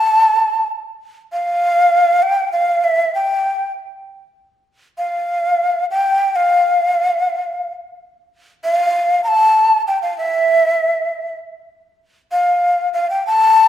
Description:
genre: andean folk.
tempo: 98 BPM.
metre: 3/4.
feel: straight.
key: unclear.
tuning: A4 = 440 Hz.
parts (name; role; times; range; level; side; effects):
breathy large quena; solo; 0.0-13.7 s; E5 to Bb5; -14 LUFS; equal; none.
room: wet recital hall reverb, RT60 1.4 s.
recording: none.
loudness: -14 LUFS.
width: side -11 dB against mid.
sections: 0.0-8.3 A section; 8.3-13.7 B section.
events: none.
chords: none.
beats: 0.36 | 0.98 1.59 2.20 | 2.82 3.43 4.04 | 4.66 5.27 5.88 | 6.50 7.11 7.72 | 8.34 8.95 9.56 | 10.17 10.79 11.40 | 12.01 12.63 13.24.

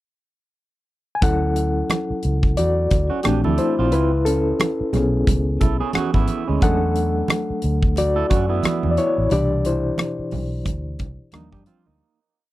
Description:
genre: lush 1970s-style soul.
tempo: 89 BPM.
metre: 4/4.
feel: swing 58% on 16ths.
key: A major.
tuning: A4 = 440 Hz.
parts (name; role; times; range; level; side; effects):
overdriven reed electric piano; accompaniment; 1.2-12.0 s; B2 to G#5; -22 LUFS; left 2 dB; fast tremolo.
vintage muted fingered electric bass; bass; 1.2-12.0 s; G#1 to G2; -22 LUFS; equal; none.
modern studio drum kit; drums; 1.2-11.8 s; hi-hat, kick drum, rim click; -21 LUFS; equal; none.
congas; percussion; 1.9-12.0 s; none; -28 LUFS; right 5 dB; none.
electric guitar at the edge of break-up; riff; 3.1-12.2 s; G#3 to A4; -26 LUFS; right 7 dB; spring reverb.
room: little or no reverb.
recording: dry, close 1970s-style studio recording.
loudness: -18 LUFS.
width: side -16 dB against mid.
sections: 0.0-1.2 pickup bar; 1.2-12.0 verse.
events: reed electric piano solo 1.2-12.0; fade-out 9.3-12.0.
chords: 0.0 N.C.; 1.2 Dmaj7; 3.2 Bbmaj9; 3.9 Amaj9; 6.6 E9sus4; 9.3 Cmaj9; 11.3 D#maj7.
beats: 0.54 | 1.22 1.90 2.57 3.25 | 3.92 4.60 5.27 5.95 | 6.62 7.30 7.97 8.64 | 9.32 9.99 10.66 11.34.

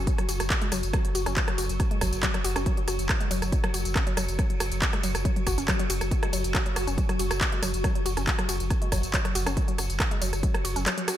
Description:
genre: driving peak-time techno.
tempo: 139 BPM.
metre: 4/4.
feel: straight.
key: unclear.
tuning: A4 = 441 Hz.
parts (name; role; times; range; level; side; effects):
woody wave-folded pluck; riff; 0.0-11.1 s; F#3 to F#4; -33 LUFS; left 1 dB; chorus, sidechain pumping, ping-pong delay.
warm sub bass; bass; 0.0-10.9 s; F#1; -31 LUFS; equal; sidechain pumping, low-pass filter.
swarming drone; drone; 0.0-11.2 s; F#3 to F#4; -34 LUFS; equal; built-in reverb, wide subtle chorus, sidechain pumping.
electronic kick drum; drums; 0.1-10.5 s; none; -27 LUFS; equal; none.
techno drum kit; drums; 0.1-11.2 s; handclaps, hi-hat, ride cymbal, rim click, tambourine; -29 LUFS; equal; sidechain pumping on hats, sidechain pumping on cymbals, sidechain pumping on perc, gated reverb.
room: little or no reverb.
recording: bright 1980s-style digital production.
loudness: -24 LUFS.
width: side -12 dB against mid.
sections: 0.0-11.2 A section.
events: none.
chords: none.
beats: 0.07 0.50 | 0.93 1.37 1.80 2.23 | 2.66 3.09 3.52 3.96 | 4.39 4.82 5.25 5.68 | 6.11 6.55 6.98 7.41 | 7.84 8.27 8.70 9.14 | 9.57 10.00 10.43 10.86.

